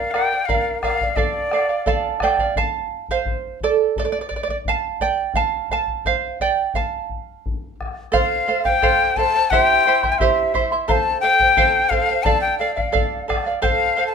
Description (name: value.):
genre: andean folk, Andean ensemble.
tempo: 86 BPM.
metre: 2/4.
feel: straight.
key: D minor.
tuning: A4 = 439 Hz.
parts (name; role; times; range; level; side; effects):
mellow quena; melody; 0.0-2.2, 8.2-14.1 s; D5 to Bb5; -18 LUFS; left 4 dB; plate reverb.
charango; accompaniment; 0.0-14.1 s; E4 to C6; -20 LUFS; right 7 dB; none.
bombo; percussion; 0.1-13.8 s; none; -26 LUFS; left 3 dB; none.
room: moderate studio reverb, RT60 0.6 s.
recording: none.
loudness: -17 LUFS.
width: side -6 dB against mid.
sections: 0.0-2.6 A section; 2.6-8.1 B section; 8.1-14.1 C section.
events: charango solo 2.6-8.1.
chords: 0.0 Bb; 1.2 Dm; 5.3 F; 9.5 C; 10.9 F; 12.3 Dm; 13.6 F.